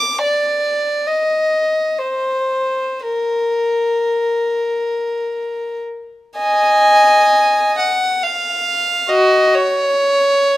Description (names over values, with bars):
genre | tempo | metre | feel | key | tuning
classical, free, expressive piece for unaccompanied violin | free time | none | none | Eb minor from 6.4 s | A4 = 441 Hz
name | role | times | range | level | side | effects
warm violin | solo | 0.0-10.6 s | Gb4 to D6 | -14 LUFS | equal | none
room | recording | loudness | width
light reverb | close, detailed microphones | -14 LUFS | side -15 dB against mid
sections
0.0-6.4 A section; 6.4-10.6 B section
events
none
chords
none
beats
free time